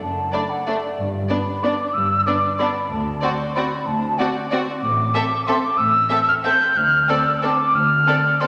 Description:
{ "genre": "classical, orchestral ballroom waltz", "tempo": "186 BPM", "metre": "3/4", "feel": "uneven beats, rubato", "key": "unclear", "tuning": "A4 = 440 Hz", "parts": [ { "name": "mellow hollow concert flute", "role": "second line", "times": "0.0-8.5 s", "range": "D5 to G6", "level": "-22 LUFS", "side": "equal", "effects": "none" }, { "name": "dark studio cello section", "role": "bass", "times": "0.0-8.0 s", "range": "D2 to A2", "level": "-30 LUFS", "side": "equal", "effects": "none" }, { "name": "rich studio double bass section", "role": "bass", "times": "0.0-8.0 s", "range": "F#1 to D2", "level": "-35 LUFS", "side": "equal", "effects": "none" }, { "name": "warm studio violin section", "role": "melody", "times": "0.3-8.5 s", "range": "D5 to E5", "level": "-31 LUFS", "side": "equal", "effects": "none" }, { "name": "rich studio violin section", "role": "second line", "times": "0.3-8.5 s", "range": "D4 to A4", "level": "-30 LUFS", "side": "equal", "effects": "none" }, { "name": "warm studio viola section", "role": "accompaniment", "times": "0.3-8.5 s", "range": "A3 to C4", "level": "-31 LUFS", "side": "equal", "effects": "none" } ], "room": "wet scoring stage reverb, RT60 1.7 s", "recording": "none", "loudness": "-20 LUFS", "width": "mono", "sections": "0.0-8.5 A section", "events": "none", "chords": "0.0 D/F#; 1.0 G; 2.9 D7; 4.8 Am; 6.8 Dm7" }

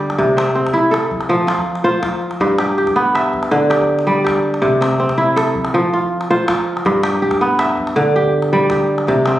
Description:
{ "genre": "west african traditional, West African string and xylophone music", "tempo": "108 BPM (dotted quarters)", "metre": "12/8", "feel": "straight", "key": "G mixolydian", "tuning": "A4 = 441 Hz", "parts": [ { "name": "kora", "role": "arpeggios", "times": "0.0-9.4 s", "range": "G2 to E5", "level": "-14 LUFS", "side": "equal", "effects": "none" }, { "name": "calabash", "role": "percussion", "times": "0.1-9.4 s", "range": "none", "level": "-24 LUFS", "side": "left 1 dB", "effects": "none" } ], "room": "wet recital hall reverb, RT60 1.4 s", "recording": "recorded on a phone in the room, studio reverb, compression", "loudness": "-14 LUFS", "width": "side -13 dB against mid", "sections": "0.0-9.4 A section", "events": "none", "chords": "0.2 C; 1.3 F; 2.4 G; 4.6 C; 5.7 F; 6.9 G" }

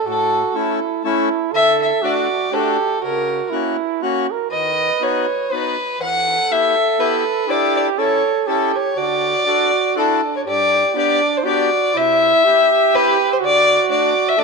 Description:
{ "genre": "alpine folk", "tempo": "122 BPM", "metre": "3/4", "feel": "swing 55% on 8ths", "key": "D major, G major from 10.5 s", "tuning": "A4 = 440 Hz", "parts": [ { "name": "dark fiddle", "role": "melody", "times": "0.0-14.4 s", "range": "A4 to F#5", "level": "-17 LUFS", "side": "left 2 dB", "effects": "tape echo" }, { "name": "dark trumpet", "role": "second line", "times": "0.0-14.4 s", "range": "D4 to B4", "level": "-20 LUFS", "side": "right 13 dB", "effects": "none" }, { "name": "accordion", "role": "accompaniment", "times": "0.0-14.4 s", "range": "G2 to A4", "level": "-24 LUFS", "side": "left 13 dB", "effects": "none" } ], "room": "moderate plate reverb, RT60 2.5 s", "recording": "1960s-style stereo with parts hard left and right", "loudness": "-15 LUFS", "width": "side -4 dB against mid", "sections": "0.0-10.5 A section; 10.5-14.4 B section", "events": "none", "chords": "0.1 A; 1.5 D; 3.0 F#7/C#; 4.5 B/D#; 6.0 Emadd9; 7.5 A7sus4; 8.0 A7; 9.0 D; 10.5 G; 12.0 C; 13.4 D" }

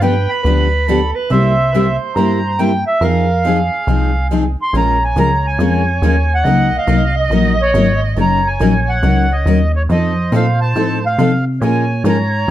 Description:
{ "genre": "acoustic string swing (jazz manouche)", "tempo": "140 BPM", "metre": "4/4", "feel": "swing 63% on 8ths", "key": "Bb minor from 4.7 s", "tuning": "A4 = 440 Hz", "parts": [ { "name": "accordion", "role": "melody", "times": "0.0-12.5 s", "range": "Db5 to C6", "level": "-18 LUFS", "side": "right 1 dB", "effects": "plate reverb" }, { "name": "warm soprano saxophone", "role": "second line", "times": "0.0-12.5 s", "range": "Ab4 to Eb5", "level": "-23 LUFS", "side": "right 4 dB", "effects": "none" }, { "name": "picked steel-string acoustic guitar", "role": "accompaniment", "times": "0.0-12.5 s", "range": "C3 to Bb4", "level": "-18 LUFS", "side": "left 5 dB", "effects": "none" }, { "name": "picked steel-string acoustic guitar", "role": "accompaniment", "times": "0.0-12.2 s", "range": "C3 to Bb4", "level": "-23 LUFS", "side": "right 4 dB", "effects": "none" }, { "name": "plucky analog bass", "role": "bass", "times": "0.0-12.5 s", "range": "Gb1 to C3", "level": "-16 LUFS", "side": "equal", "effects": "none" } ], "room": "light reverb", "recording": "none", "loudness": "-12 LUFS", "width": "side -13 dB against mid", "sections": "0.0-4.7 A section; 4.7-12.5 B section", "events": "none", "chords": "0.0 G7; 1.3 C7; 3.0 Fm7; 4.7 Bbm7; 6.5 Gb6; 8.2 Ebm7/Gb; 9.9 F7; 11.6 Bbm7" }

